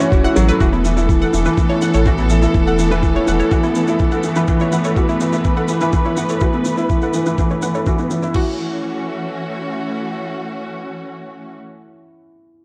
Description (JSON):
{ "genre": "piano and strings electronica", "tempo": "124 BPM", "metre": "4/4", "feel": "straight", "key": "unclear", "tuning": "A4 = 443 Hz", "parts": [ { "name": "warm studio string section", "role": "sustained chords", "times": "0.0-11.6 s", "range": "E3 to B4", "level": "-25 LUFS", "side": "equal", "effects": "sidechain pumping, low-pass filter" }, { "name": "felt-muted upright piano", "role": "riff", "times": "0.0-12.6 s", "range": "E3 to A4", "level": "-20 LUFS", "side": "equal", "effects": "digital delay" }, { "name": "electronic shaker and crash cymbal", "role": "drums", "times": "0.0-8.4 s", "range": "none", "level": "-37 LUFS", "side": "equal", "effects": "none" }, { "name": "warm sub bass", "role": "bass", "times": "0.1-3.4 s", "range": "E1 to A1", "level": "-20 LUFS", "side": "equal", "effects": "sidechain pumping" }, { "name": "electronic kick drum", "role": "drums", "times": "0.1-8.4 s", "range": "none", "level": "-20 LUFS", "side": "equal", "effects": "none" }, { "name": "analog pluck", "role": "arpeggios", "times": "0.2-8.6 s", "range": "E4 to F#5", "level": "-29 LUFS", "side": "equal", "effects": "chorus, sidechain pumping, digital delay" } ], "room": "moderate recital hall reverb, RT60 1.4 s", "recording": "dark, warm production", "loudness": "-17 LUFS", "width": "mono", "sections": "0.6-8.3 A section; 8.3-12.2 B section", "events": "filter sweep on string section 0.6-8.3; filter sweep on synth arpeggio sound 0.6-8.3", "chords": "0.0 Esus4; 8.3 F#m7" }